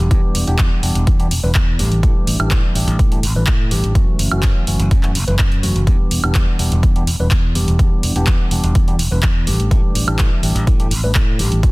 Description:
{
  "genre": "filtered disco house",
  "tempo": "125 BPM",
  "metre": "4/4",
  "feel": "straight",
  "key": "unclear",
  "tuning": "A4 = 440 Hz",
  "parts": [
    { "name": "mellow tine electric piano", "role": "accompaniment", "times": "0.0-11.7 s", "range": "E3 to B4", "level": "-22 LUFS", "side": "equal", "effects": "phaser, sidechain pumping" },
    { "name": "modern bright fingered electric bass", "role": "bass", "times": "0.0-11.7 s", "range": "E1 to A2", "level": "-18 LUFS", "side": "equal", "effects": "sidechain pumping" },
    { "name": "electronic kick drum", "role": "drums", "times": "0.1-11.7 s", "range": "none", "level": "-15 LUFS", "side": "equal", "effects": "overdrive, studio reverb" },
    { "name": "punchy analog drum machine", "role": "drums", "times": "0.1-11.7 s", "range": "handclaps, hi-hat, woodblock", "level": "-22 LUFS", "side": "right 1 dB", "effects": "overdrive, sidechain pumping on hats, studio reverb, sidechain pumping on cymbals, sidechain pumping on perc" }
  ],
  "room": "digital ambience",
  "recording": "dense, heavily limited modern master",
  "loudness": "-13 LUFS",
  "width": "side -24 dB against mid",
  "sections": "0.0-11.7 A section",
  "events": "none",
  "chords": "0.0 Em7; 1.8 A7sus4; 4.0 F#m7; 5.9 Em7; 9.5 A7sus4",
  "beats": "| 0.11 0.59 1.07 1.55 | 2.03 2.51 2.99 3.47 | 3.95 4.43 4.91 5.39 | 5.87 6.35 6.83 7.31 | 7.79 8.27 8.75 9.23 | 9.71 10.19 10.67 11.15 | 11.63"
}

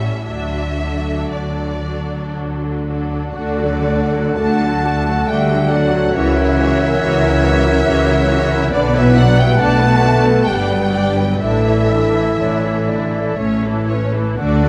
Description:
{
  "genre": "classical",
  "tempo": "56-71 BPM",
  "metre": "3/4",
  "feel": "rubato",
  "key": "D major",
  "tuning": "A4 = 440 Hz",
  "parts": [
    { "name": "rich studio violin section", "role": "melody", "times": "0.0-14.7 s", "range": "E4 to E5", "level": "-30 LUFS", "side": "equal", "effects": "none" },
    { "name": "warm studio violin section", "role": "second line", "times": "0.0-14.7 s", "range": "E4 to A5", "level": "-26 LUFS", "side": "equal", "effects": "none" },
    { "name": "clear studio viola section", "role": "accompaniment", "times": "0.0-14.7 s", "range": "D3 to F#4", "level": "-26 LUFS", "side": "equal", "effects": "none" },
    { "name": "dark studio double bass section", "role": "bass", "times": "0.0-14.7 s", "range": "G1 to D2", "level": "-23 LUFS", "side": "equal", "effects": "none" },
    { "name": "warm studio cello section", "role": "bass", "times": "0.0-14.7 s", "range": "G2 to D3", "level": "-23 LUFS", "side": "equal", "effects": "none" },
    { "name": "clear oboe", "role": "second line", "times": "3.4-14.7 s", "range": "E5 to F#5", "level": "-28 LUFS", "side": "equal", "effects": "none" },
    { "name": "dark clarinet", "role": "second line", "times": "3.4-14.7 s", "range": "A4 to D5", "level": "-27 LUFS", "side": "equal", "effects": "none" },
    { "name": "mellow concert flute", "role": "second line", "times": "3.4-14.7 s", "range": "A4 to F#5", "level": "-25 LUFS", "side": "equal", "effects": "none" },
    { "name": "mellow French horn section", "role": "sustained chords", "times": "3.4-14.7 s", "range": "D3 to A3", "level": "-23 LUFS", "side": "equal", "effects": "none" }
  ],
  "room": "moderate concert hall reverb, RT60 1.9 s",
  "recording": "dark, warm production",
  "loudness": "-16 LUFS",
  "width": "mono",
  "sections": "0.0-3.3 A section; 3.3-14.7 A section",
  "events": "none",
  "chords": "0.3 D; 6.1 F#7/C#; 8.7 Bm; 10.5 Gmaj7; 11.4 Asus4; 13.4 A",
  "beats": "| 0.27 1.31 2.33 | 3.35 4.38 5.29 | 6.15 7.01 7.86 | 8.74 9.60 10.49 | 11.43 12.40 13.38 | 14.39"
}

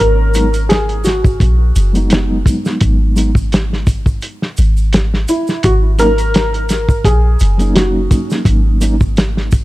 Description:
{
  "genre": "trip hop",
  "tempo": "85 BPM",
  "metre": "4/4",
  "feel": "swing 54% on 16ths",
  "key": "G# minor",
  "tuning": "A4 = 442 Hz",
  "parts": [
    { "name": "felt-muted upright piano", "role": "melody", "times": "0.0-8.3 s", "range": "E4 to A#4", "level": "-18 LUFS", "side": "equal", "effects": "tape echo" },
    { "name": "soft 808-style bass", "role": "bass", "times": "0.0-9.6 s", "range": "F#1 to A#1", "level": "-14 LUFS", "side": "equal", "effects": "none" },
    { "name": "tube shaker", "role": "percussion", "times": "0.0-9.6 s", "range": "none", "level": "-34 LUFS", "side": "right 2 dB", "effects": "none" },
    { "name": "mellow reed electric piano", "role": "accompaniment", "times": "0.3-8.9 s", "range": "F#3 to D#4", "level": "-20 LUFS", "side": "equal", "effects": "fast tremolo, low-pass filter, tape echo" },
    { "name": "warm soul drum kit", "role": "drums", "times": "0.3-9.6 s", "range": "hi-hat, kick drum, snare drum", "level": "-14 LUFS", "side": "equal", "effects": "vintage 12-bit sampler grit" }
  ],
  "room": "studio ambience",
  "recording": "dark, warm production",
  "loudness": "-11 LUFS",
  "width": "side -18 dB against mid",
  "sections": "0.0-9.6 A section",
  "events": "filter sweep on reed electric piano 0.0-9.6",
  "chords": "0.0 G#m7; 5.6 D#m7",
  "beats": "| 0.00 0.70 1.41 2.11 | 2.82 3.52 4.23 4.94 | 5.64 6.35 7.05 7.76 | 8.47 9.17"
}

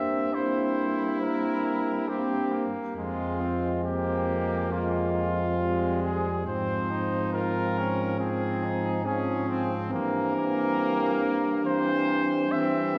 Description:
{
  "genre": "classical, brass quintet",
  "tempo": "69 BPM",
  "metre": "4/4",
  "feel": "straight",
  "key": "F minor",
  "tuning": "A4 = 441 Hz",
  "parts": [
    { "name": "clear trumpet", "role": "melody", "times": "0.0-13.0 s", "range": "F4 to E5", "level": "-34 LUFS", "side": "equal", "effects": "none" },
    { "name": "bright trumpet", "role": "second line", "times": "0.0-13.0 s", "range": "Ab3 to F4", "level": "-35 LUFS", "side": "equal", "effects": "none" },
    { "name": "brilliant trombone", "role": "accompaniment", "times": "0.0-13.0 s", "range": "E3 to Bb3", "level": "-36 LUFS", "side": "equal", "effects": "none" },
    { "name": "warm French horn", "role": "accompaniment", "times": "0.0-13.0 s", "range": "C4", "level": "-34 LUFS", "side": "equal", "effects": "none" },
    { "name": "warm bass trombone", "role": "bass", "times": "0.0-13.0 s", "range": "F2 to Ab2", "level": "-32 LUFS", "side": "equal", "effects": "none" }
  ],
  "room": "wet concert hall reverb, RT60 2.0 s",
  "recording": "heard from further back in the room",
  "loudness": "-27 LUFS",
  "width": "mono",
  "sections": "0.0-13.0 A section",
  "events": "none",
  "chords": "0.0 C7/G; 3.0 Fm; 6.5 Fm/Ab; 9.9 C7/G",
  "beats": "0.34 1.21 2.09 | 2.96 3.84 4.71 5.58 | 6.46 7.33 8.19 9.05 | 9.92 10.79 11.66 12.52"
}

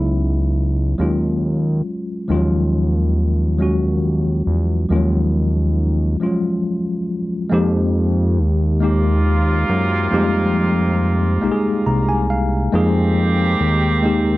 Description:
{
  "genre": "slow six-eight R&B",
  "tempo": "46 BPM (dotted quarters)",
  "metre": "6/8",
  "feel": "straight",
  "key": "F phrygian",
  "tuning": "A4 = 440 Hz",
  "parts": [
    { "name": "mellow tine electric piano", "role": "accompaniment", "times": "0.0-14.4 s", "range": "F3 to Bb5", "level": "-19 LUFS", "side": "left 1 dB", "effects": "medium stereo tremolo" },
    { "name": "fat analog bass", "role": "bass", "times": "0.0-14.4 s", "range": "C2 to Gb2", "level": "-17 LUFS", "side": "equal", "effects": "none" },
    { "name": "clear horn section", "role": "stabs", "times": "8.8-14.4 s", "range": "C3 to G4", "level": "-23 LUFS", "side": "right 2 dB", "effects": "none" }
  ],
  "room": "light reverb",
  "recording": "none",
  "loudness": "-15 LUFS",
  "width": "side -18 dB against mid",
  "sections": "0.0-7.5 A section; 7.5-14.4 B section",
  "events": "break 6.2-7.5; tine electric piano fill 11.4-12.7",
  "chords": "0.0 Dbm11; 1.0 Ebm11; 7.5 Fm11",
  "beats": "0.99 | 2.29 3.60 | 4.90 6.21 | 7.51 8.81 | 10.12 11.42 | 12.73 14.03"
}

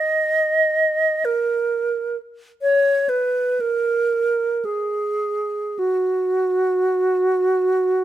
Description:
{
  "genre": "classical, free, expressive piece for unaccompanied alto flute",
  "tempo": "free time",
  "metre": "none",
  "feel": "none",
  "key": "F# major",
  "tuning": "A4 = 441 Hz",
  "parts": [
    { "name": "bright alto flute", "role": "solo", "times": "0.0-8.0 s", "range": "F#4 to D#5", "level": "-18 LUFS", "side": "right 1 dB", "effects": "none" }
  ],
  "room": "light reverb",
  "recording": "close, detailed microphones",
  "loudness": "-18 LUFS",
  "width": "side -12 dB against mid",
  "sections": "0.0-8.0 A section",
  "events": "none",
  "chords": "none",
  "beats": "free time"
}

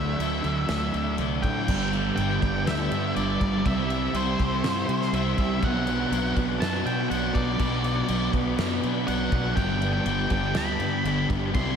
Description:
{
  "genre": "rock, shoegaze and dream pop",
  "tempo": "122 BPM",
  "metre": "4/4",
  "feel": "straight",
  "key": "G major",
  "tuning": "A4 = 438 Hz",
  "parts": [
    { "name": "octave-fuzz lead guitar", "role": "melody", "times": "0.0-11.8 s", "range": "C5 to C6", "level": "-31 LUFS", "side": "equal", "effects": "distortion, analog delay" },
    { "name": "crunchy overdriven guitar", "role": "riff", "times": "0.0-11.8 s", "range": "G2 to E4", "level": "-30 LUFS", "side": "right 8 dB", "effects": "reverse reverb" },
    { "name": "thick fuzz guitar", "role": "riff", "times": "0.0-11.8 s", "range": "G2 to D4", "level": "-29 LUFS", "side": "left 5 dB", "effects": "distortion, wide subtle chorus" },
    { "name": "fuzz fingered electric bass", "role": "bass", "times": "0.0-11.8 s", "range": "G1 to C3", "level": "-30 LUFS", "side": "equal", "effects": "overdrive" },
    { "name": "loose indie drum kit", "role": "drums", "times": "0.2-11.7 s", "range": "crash cymbal, kick drum, snare drum", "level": "-30 LUFS", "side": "equal", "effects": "none" },
    { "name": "string machine, violins", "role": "sustained chords", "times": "1.7-11.8 s", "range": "B3 to B5", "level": "-36 LUFS", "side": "right 2 dB", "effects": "ensemble chorus" }
  ],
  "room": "wet lush hall reverb, RT60 2.4 s",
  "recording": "dreamy mix soaked in reverb",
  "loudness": "-23 LUFS",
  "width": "side -7 dB against mid",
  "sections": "0.0-1.7 A section; 1.7-11.8 B section",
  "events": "none",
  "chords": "0.0 Dadd9; 1.7 Gadd9; 3.7 Cmaj7; 5.6 Bm; 9.6 Gadd9",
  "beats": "0.21 0.70 1.20 | 1.69 2.18 2.67 3.17 | 3.66 4.15 4.64 5.14 | 5.63 6.12 6.62 7.11 | 7.60 8.09 8.59 9.08 | 9.57 10.07 10.56 11.06 | 11.55"
}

